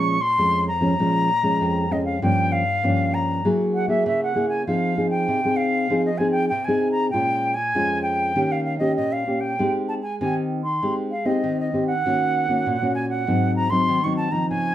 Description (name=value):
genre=samba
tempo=98 BPM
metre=4/4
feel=straight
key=F minor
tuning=A4 = 439 Hz
part: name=silver concert flute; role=melody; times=0.0-14.7 s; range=Eb5 to Db6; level=-23 LUFS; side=equal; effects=none
part: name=nylon-string guitar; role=accompaniment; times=0.0-14.7 s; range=F2 to Ab4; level=-22 LUFS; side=equal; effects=none
room=moderate studio reverb, RT60 0.5 s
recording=heard from further back in the room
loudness=-19 LUFS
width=side -12 dB against mid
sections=0.0-4.7 A section; 4.7-14.7 B section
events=none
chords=0.0 Bbm7; 2.2 Gm7b5; 3.5 Gb9; 4.7 Fm7; 7.1 Bbm7; 8.4 Eb7; 9.6 Abmaj7; 12.1 Ebm7; 13.3 Ab7